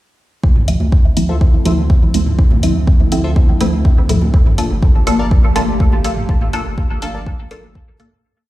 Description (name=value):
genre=dub techno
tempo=123 BPM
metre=4/4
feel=straight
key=D minor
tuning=A4 = 439 Hz
part: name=warbly tape-like pad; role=sustained chords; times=1.1-8.2 s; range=D3 to G4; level=-24 LUFS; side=right 1 dB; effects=chorus, built-in reverb, phaser, sidechain pumping
part: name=soft dub sub bass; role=bass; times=0.4-8.0 s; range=G1 to D2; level=-18 LUFS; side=equal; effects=sidechain pumping
part: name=electronic kick drum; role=drums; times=0.4-7.9 s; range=none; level=-12 LUFS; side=equal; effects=none
part: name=electronic congas and toms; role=percussion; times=0.4-8.2 s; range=none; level=-25 LUFS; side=right 1 dB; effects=overdrive, sidechain pumping on perc, sidechain pumping on toms, dub echo
part: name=filtered dub chord stab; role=stabs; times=0.7-8.1 s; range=F3 to A4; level=-20 LUFS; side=equal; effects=phaser, sidechain pumping, dub echo
part: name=electronic hi-hat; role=drums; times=0.7-8.1 s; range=none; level=-29 LUFS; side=left 1 dB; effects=none
part: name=wavetable chord stab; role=riff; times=1.3-7.6 s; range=F4 to A5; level=-30 LUFS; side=left 2 dB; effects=sidechain pumping, dub echo
room=little or no reverb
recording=played on a big sound system in a bare room, large studio reverb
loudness=-11 LUFS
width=side -16 dB against mid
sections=0.4-8.2 groove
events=fade-out 5.6-8.2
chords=0.4 Dm9; 4.3 Gm9